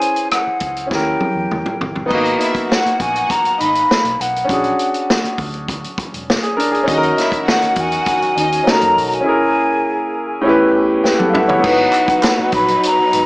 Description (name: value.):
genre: lush 1970s-style soul.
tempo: 101 BPM.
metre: 4/4.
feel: straight.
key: G# minor.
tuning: A4 = 440 Hz.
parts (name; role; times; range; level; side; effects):
breathy hollow jazz flute; melody; 0.0-13.3 s; E#5 to B5; -17 LUFS; equal; tape echo.
clear baby grand piano; accompaniment; 0.0-13.3 s; A2 to G5; -18 LUFS; equal; none.
vintage drum kit; drums; 0.0-13.3 s; crash cymbal, hi-hat, kick drum, rim click, snare drum, toms; -20 LUFS; equal; none.
vintage muted fingered electric bass; bass; 0.5-13.3 s; E1 to F#2; -30 LUFS; equal; none.
warm studio string section; second line; 2.1-13.3 s; F#3 to F#5; -22 LUFS; equal; none.
dark French horn section; sustained chords; 6.9-13.3 s; B2 to G#4; -24 LUFS; right 1 dB; none.
group handclap; percussion; 11.9-12.4 s; none; -26 LUFS; right 1 dB; none.
room: moderate studio reverb, RT60 0.6 s.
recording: small speaker sound.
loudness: -13 LUFS.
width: side -23 dB against mid.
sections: 0.0-2.1 A section; 2.1-11.6 B section; 11.6-13.3 C section.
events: drum fill 0.9-2.1, 11.0-11.6.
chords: 0.0 A#m7b5 (rootless); 0.9 D#7b9; 2.1 G#m9; 4.5 A#7alt; 6.9 D#m7; 9.3 A#m7b5; 10.4 A9; 11.6 G#m9.